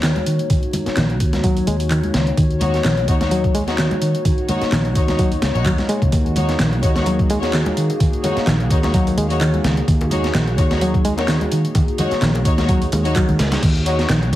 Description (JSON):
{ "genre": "breakbeat, breaks", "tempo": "128 BPM", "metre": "4/4", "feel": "swing 55% on 16ths", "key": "Eb minor pentatonic", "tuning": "A4 = 438 Hz", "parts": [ { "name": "dark analog pad", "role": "sustained chords", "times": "0.0-14.4 s", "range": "Bb3 to Db5", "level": "-25 LUFS", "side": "equal", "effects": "chorus, phaser, sidechain pumping" }, { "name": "reed electric piano", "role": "riff", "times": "0.0-14.2 s", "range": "Db3 to Bb3", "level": "-21 LUFS", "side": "equal", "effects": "ping-pong delay" }, { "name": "fingered electric bass", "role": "bass", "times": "0.0-14.4 s", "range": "Bb1 to Eb2", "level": "-21 LUFS", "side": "equal", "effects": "none" }, { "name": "breakbeat sampler-style drum kit", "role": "drums", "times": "0.0-14.4 s", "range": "crash cymbal, hi-hat, kick drum, snare drum", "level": "-20 LUFS", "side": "equal", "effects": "small room ambience" }, { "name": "house drum kit", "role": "drums", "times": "0.0-14.4 s", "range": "handclaps, hi-hat", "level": "-30 LUFS", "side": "equal", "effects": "small room ambience" }, { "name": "congas and bongos", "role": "percussion", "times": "0.2-13.6 s", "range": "none", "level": "-27 LUFS", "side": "left 1 dB", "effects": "none" }, { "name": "dark studio string section", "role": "stabs", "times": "2.6-14.4 s", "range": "Bb3 to Db5", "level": "-24 LUFS", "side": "left 2 dB", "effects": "ping-pong delay" } ], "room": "light reverb, digital ambience", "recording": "heavily compressed radio sound, vinyl crackle", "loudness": "-15 LUFS", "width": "side -14 dB against mid", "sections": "0.0-13.6 A section", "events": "none", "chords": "0.0 Ebm7" }